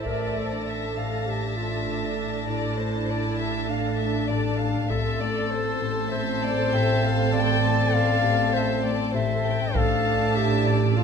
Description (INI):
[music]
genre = cinematic, suspense film score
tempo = 99 BPM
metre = 4/4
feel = straight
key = unclear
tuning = A4 = 441 Hz
[part]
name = warm chamber violin section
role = second line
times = 0.0-11.0 s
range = C5 to A5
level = -30 LUFS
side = left 4 dB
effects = none
[part]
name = warm clarinet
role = second line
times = 0.0-11.0 s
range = D4 to E5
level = -28 LUFS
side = left 2 dB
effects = none
[part]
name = warm chamber viola section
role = accompaniment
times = 0.0-11.0 s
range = A3 to E5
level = -31 LUFS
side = right 3 dB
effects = none
[part]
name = ethereal airy pad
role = sustained chords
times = 0.0-11.0 s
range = A4 to A5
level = -38 LUFS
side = equal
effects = none
[part]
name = vibraphone with hard mallets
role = texture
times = 0.0-9.8 s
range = A4 to A5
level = -39 LUFS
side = left 1 dB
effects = none
[part]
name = warm chamber violin section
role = melody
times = 0.1-11.0 s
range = A5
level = -34 LUFS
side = left 2 dB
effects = none
[part]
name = folk marimba with medium mallets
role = riff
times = 0.1-11.0 s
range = A2 to A3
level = -30 LUFS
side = left 10 dB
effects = none
[part]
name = dark chamber cello section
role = bass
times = 0.1-11.0 s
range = A2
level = -31 LUFS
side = right 6 dB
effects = none
[part]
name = dark chamber double bass section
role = bass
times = 0.1-11.0 s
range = A1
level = -30 LUFS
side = right 5 dB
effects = none
[part]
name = taiko ensemble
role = drums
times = 0.1-1.2, 4.9-6.1, 9.8-10.3 s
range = none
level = -32 LUFS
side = equal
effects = none
[part]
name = warm chamber violin section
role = texture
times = 0.1-11.0 s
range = A5 to Bb6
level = -40 LUFS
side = left 4 dB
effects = none
[sound]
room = moderate concert hall reverb, RT60 2.0 s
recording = close, detailed microphones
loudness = -22 LUFS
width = side -6 dB against mid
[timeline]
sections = 0.0-11.0 A section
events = none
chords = 0.1 Dm/A; 4.9 Am7; 9.8 Dm/A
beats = | 0.06 0.66 1.27 1.88 | 2.48 3.09 3.69 4.30 | 4.91 5.51 6.12 6.72 | 7.33 7.94 8.54 9.15 | 9.75 10.36 10.97